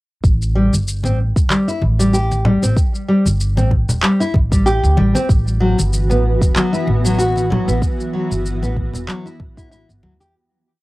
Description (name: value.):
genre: organic downtempo.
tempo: 95 BPM.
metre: 4/4.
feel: swing 56% on 16ths.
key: unclear.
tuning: A4 = 438 Hz.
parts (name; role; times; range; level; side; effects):
upright bass; bass; 0.2-10.3 s; E1 to E2; -17 LUFS; equal; sidechain pumping.
electronic kick drum; drums; 0.2-9.7 s; none; -16 LUFS; equal; none.
electronic shaker and handclaps; drums; 0.2-10.3 s; none; -23 LUFS; equal; none.
nylon-string guitar; arpeggios; 0.6-10.3 s; F#3 to G4; -18 LUFS; equal; cassette tape, analog delay.
congas; percussion; 0.7-10.3 s; none; -22 LUFS; left 1 dB; none.
granular cloud pad; sustained chords; 5.9-10.3 s; E3 to F#4; -24 LUFS; right 1 dB; built-in reverb, vintage 12-bit sampler grit, sidechain pumping, cassette tape.
room: light reverb.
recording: home recording on cassette.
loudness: -14 LUFS.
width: side -19 dB against mid.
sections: 0.2-10.3 groove.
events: fade-out 7.0-10.3.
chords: 0.2 A7(no3); 5.3 Emadd9.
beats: | 0.24 0.87 1.50 2.13 | 2.77 3.40 4.03 4.66 | 5.29 5.92 6.56 7.19 | 7.82 8.45 9.08 9.71.